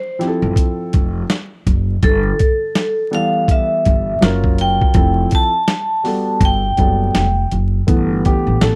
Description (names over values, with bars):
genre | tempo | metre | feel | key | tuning
hip hop, jazz-hop | 82 BPM | 4/4 | swing 60% on 16ths | G mixolydian | A4 = 440 Hz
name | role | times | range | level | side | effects
vibraphone with hard mallets | melody | 0.0-7.5 s | A4 to A5 | -20 LUFS | equal | none
dark grand piano | accompaniment | 0.2-8.8 s | E3 to A#4 | -22 LUFS | equal | none
boom bap sampler-style drum kit | drums | 0.2-8.8 s | hi-hat, kick drum, snare drum | -18 LUFS | equal | none
upright bass | bass | 0.4-8.8 s | F1 to A1 | -20 LUFS | equal | none
room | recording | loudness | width
little or no reverb | dry, close 1970s-style studio recording, vinyl crackle | -16 LUFS | mono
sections
0.0-7.9 A section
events
none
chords
0.0 Fmaj7; 2.0 G69; 4.2 F#maj7; 5.0 Fmaj7; 6.4 Gmaj9; 7.9 G69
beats
0.57 1.30 | 2.03 2.76 3.49 4.22 | 4.96 5.69 6.42 7.15 | 7.88 8.62